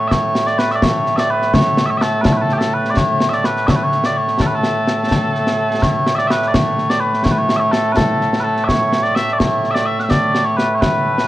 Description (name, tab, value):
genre	scottish traditional, Scottish pipe music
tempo	84 BPM (dotted quarters)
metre	6/8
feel	straight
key	A major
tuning	A4 = 441 Hz
part	mellow small bagpipes	melody	0.0-11.3 s	A2 to F#5	-16 LUFS	equal	none
part	concert snare drum and concert bass drum	drums	0.1-11.3 s	none	-18 LUFS	left 1 dB	none
room	moderate recital hall reverb, RT60 1.7 s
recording	worn, warbling old tape, cassette tape, warbly pitch drift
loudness	-14 LUFS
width	side -15 dB against mid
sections	0.0-5.8 A section; 5.8-11.3 A section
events	none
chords	none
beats	| 0.11 0.82 | 1.54 2.25 | 2.97 3.68 | 4.39 5.11 | 5.82 6.54 | 7.25 7.97 | 8.68 9.39 | 10.11 10.82